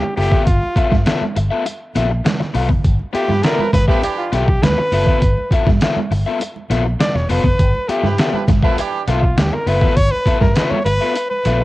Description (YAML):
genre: funk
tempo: 101 BPM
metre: 4/4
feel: straight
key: G mixolydian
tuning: A4 = 445 Hz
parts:
  - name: warm trumpet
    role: melody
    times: 0.0-11.6 s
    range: F4 to D5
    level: -20 LUFS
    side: equal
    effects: cassette tape
  - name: crunchy overdriven guitar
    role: accompaniment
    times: 0.0-11.6 s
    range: B3 to F5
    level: -22 LUFS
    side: left 5 dB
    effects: cassette tape
  - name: congas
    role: percussion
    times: 0.0-11.4 s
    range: none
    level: -26 LUFS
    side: right 6 dB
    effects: none
  - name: fingered electric bass with an envelope filter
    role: bass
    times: 0.2-11.6 s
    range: E1 to G2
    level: -19 LUFS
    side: equal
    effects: none
  - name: trip hop sampler-style drum kit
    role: drums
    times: 0.2-11.6 s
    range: hi-hat, kick drum, snare drum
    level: -17 LUFS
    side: equal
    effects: cassette tape
  - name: clear horn section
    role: second line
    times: 3.3-4.3, 8.0-9.0 s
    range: E3 to D5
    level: -25 LUFS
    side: right 6 dB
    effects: cassette tape
room: little or no reverb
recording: home recording on cassette, lossy compression artefacts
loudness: -14 LUFS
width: side -17 dB against mid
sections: 0.0-11.6 A section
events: trumpet solo 0.0-11.6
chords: 0.0 G13